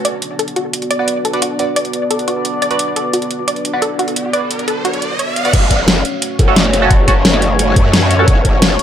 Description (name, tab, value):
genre	dark technical drum and bass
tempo	175 BPM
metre	4/4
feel	straight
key	F# minor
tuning	A4 = 440 Hz
part	sweeping resonant pad	sustained chords	0.0-8.8 s	A3 to D5	-20 LUFS	left 1 dB	chorus, sidechain pumping
part	wide unison pluck	arpeggios	0.0-5.3 s	F#4 to D5	-20 LUFS	left 1 dB	sidechain pumping, tape echo
part	dubstep drum kit	drums	0.0-8.8 s	crash cymbal, hi-hat, snare drum	-16 LUFS	equal	none
part	band-passed chord stab	stabs	1.0-8.2 s	C#4 to D5	-20 LUFS	right 2 dB	phaser, analog chorus, tape echo
part	riser	sound effects	3.7-5.5 s	none	-22 LUFS	right 1 dB	none
part	growl bass	bass	5.5-8.8 s	F#1 to F#2	-15 LUFS	equal	chorus, tube saturation, sidechain pumping
part	electronic kick drum	drums	5.5-8.5 s	none	-12 LUFS	equal	none
room	light reverb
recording	none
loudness	-12 LUFS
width	side -9 dB against mid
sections	0.0-5.5 A section; 5.5-8.8 B section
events	riser 3.7-5.5; drop 5.5-8.8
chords	0.0 Bm; 5.5 F#m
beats	| 0.05 0.39 0.73 1.08 | 1.42 1.76 2.11 2.45 | 2.79 3.13 3.48 3.82 | 4.16 4.51 4.85 5.19 | 5.54 5.88 6.22 6.56 | 6.91 7.25 7.59 7.93 | 8.28 8.62